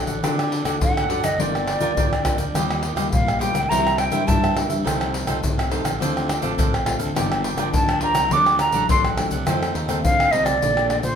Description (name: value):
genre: samba and choro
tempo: 104 BPM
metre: 4/4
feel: straight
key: G minor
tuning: A4 = 440 Hz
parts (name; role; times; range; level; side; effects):
- cavaquinho; accompaniment; 0.0-10.6 s; D4 to G5; -29 LUFS; right 6 dB; none
- nylon-string guitar; accompaniment; 0.0-11.2 s; F2 to Bb4; -28 LUFS; left 5 dB; none
- fuzz fingered electric bass; bass; 0.0-11.2 s; G1 to D3; -27 LUFS; equal; overdrive
- egg shaker, pandeiro, surdo and tamborim; percussion; 0.1-11.2 s; none; -22 LUFS; equal; none
- concert flute; melody; 0.8-11.2 s; C5 to D6; -21 LUFS; right 1 dB; none
room: wet large studio reverb, RT60 0.8 s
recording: band playing live in one room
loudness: -18 LUFS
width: side -8 dB against mid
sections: 0.0-10.6 A section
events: flute solo 0.0-10.6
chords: 0.0 D; 1.4 Gm7; 2.6 Ebadd9; 3.7 C7; 4.9 F7/C; 6.0 Dm7; 7.2 Gm7; 8.3 D; 9.5 F7; 10.6 Bbmaj7